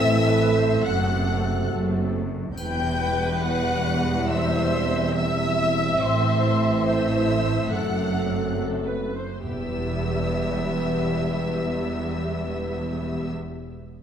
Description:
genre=cinematic, epic orchestral film score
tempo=70 BPM (dotted quarters)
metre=6/8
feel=straight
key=E minor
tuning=A4 = 440 Hz
part: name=warm symphonic violin section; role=melody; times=0.0-13.3 s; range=C6 to G6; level=-33 LUFS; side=left 3 dB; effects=none
part: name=warm symphonic violin section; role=second line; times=0.0-13.3 s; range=C5 to G5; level=-30 LUFS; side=left 2 dB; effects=none
part: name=rich symphonic viola section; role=accompaniment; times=0.0-13.3 s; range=B3 to E5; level=-30 LUFS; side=right 1 dB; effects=none
part: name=mellow French horn section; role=sustained chords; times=0.0-13.3 s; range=B3 to B4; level=-29 LUFS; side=left 2 dB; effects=none
part: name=mellow trombone section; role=sustained chords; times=0.0-13.3 s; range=C3 to A3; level=-30 LUFS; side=right 2 dB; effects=none
part: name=rich symphonic cello section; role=bass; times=0.0-13.3 s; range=E2 to A2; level=-28 LUFS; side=right 1 dB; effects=none
part: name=rich symphonic double bass section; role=bass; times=0.0-13.3 s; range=E1 to A1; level=-28 LUFS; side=right 3 dB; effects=none
part: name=triangle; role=percussion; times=2.6-3.7 s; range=none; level=-47 LUFS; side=left 3 dB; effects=none
part: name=timpani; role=percussion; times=9.4-13.3 s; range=none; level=barely audible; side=none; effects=none
room=wet scoring stage reverb, RT60 2.1 s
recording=none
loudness=-21 LUFS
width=side -8 dB against mid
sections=0.0-9.4 A section; 9.4-12.9 B section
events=none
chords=0.0 Am; 0.9 F#dim; 2.6 Em; 4.3 C/E; 6.0 Am; 7.7 F#dim; 9.4 Em

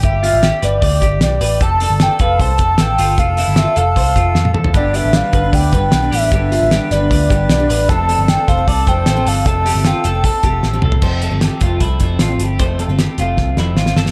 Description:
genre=jangly indie pop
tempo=153 BPM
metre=4/4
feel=straight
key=unclear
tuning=A4 = 440 Hz
part: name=warbly nostalgic lead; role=melody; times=0.0-10.8 s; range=D5 to A5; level=-21 LUFS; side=equal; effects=chorus, dub echo
part: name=melodica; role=second line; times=0.0-10.8 s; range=G4 to B4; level=-27 LUFS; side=equal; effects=dub echo
part: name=twelve-string electric guitar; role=arpeggios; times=0.0-14.1 s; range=E4 to D5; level=-26 LUFS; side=equal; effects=lush chorus, dub echo
part: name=vintage muted picked electric bass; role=bass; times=0.0-14.1 s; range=F1 to F2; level=-20 LUFS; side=equal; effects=none
part: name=cloth-damped thuddy drum kit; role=drums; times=0.0-14.1 s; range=crash cymbal, hi-hat, kick drum, snare drum, toms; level=-19 LUFS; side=equal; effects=none
part: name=picked steel-string acoustic guitar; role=accompaniment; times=4.7-14.1 s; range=F2 to D4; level=-25 LUFS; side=equal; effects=dub echo
room=light reverb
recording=echo-heavy mix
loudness=-14 LUFS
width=mono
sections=0.0-11.0 A section; 11.0-14.1 B section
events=drum fill 4.4-4.7, 10.6-11.0, 13.4-14.1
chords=0.0 G; 1.6 F; 4.7 G; 7.9 F

